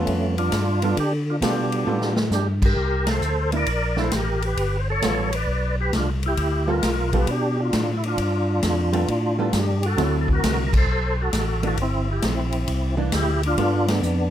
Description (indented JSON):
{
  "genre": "soul jazz organ trio",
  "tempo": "133 BPM",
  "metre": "4/4",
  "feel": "swing 67% on 8ths",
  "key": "G mixolydian",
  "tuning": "A4 = 442 Hz",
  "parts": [
    { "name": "percussive tonewheel organ", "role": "melody", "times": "0.0-14.3 s", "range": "A3 to D5", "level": "-24 LUFS", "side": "equal", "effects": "slow rotary speaker, overdrive, chorus vibrato" },
    { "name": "hollow-body jazz guitar", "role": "accompaniment", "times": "0.0-13.9 s", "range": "D3 to A4", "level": "-26 LUFS", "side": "right 3 dB", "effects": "none" },
    { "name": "tonewheel organ", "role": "bass", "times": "0.0-14.3 s", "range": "G1 to D3", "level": "-24 LUFS", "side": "equal", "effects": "overdrive, chorus vibrato, slow rotary speaker" },
    { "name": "swinging big-band drum kit", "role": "drums", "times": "0.1-14.2 s", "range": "crash cymbal, hi-hat, kick drum, ride cymbal, snare drum, toms", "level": "-26 LUFS", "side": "left 1 dB", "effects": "none" }
  ],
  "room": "light reverb",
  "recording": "close, detailed microphones",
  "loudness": "-20 LUFS",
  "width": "side -11 dB against mid",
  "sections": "0.0-14.3 A section",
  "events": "drum fill 1.9-2.3; band accent 3.0, 10.7, 13.8",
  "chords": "0.0 G9; 2.8 C9; 4.6 G9; 10.0 D9; 11.8 C9; 13.6 G9"
}